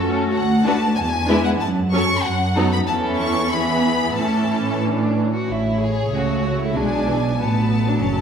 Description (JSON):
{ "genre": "quick classical-period movement for string orchestra", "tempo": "94 BPM", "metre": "2/4", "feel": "rubato", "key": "A major", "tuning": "A4 = 440 Hz", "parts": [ { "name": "rich chamber violin section", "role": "melody", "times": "0.0-8.2 s", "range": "C#5 to C#6", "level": "-24 LUFS", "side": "left 3 dB", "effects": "none" }, { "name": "rich chamber violin section", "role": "second line", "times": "0.0-8.2 s", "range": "B3 to B4", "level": "-24 LUFS", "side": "left 1 dB", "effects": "none" }, { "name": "rich studio viola section", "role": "accompaniment", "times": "0.0-8.2 s", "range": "E3 to D4", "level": "-23 LUFS", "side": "right 1 dB", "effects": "none" }, { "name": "rich chamber cello section", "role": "bass", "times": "0.0-8.2 s", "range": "D2 to C#3", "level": "-22 LUFS", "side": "right 1 dB", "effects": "none" }, { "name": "warm chamber double bass section", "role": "bass", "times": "5.5-8.2 s", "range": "F#1 to C#2", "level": "-23 LUFS", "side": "right 2 dB", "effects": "none" } ], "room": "wet scoring stage reverb, RT60 1.5 s", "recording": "heard from further back in the room", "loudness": "-17 LUFS", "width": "side -7 dB against mid", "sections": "0.0-5.5 A section; 5.5-8.2 A section", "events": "none", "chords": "0.3 Bm7/D; 1.0 E7; 1.6 F#m; 2.2 B7/F#; 2.9 A/E; 3.5 E; 4.2 A; 6.8 G#dim/B; 7.4 Bm7/A", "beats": "| 0.34 0.97 | 1.60 2.24 | 2.87 3.51 | 4.16 4.82 | 5.48 6.12 | 6.75 7.38 | 8.01" }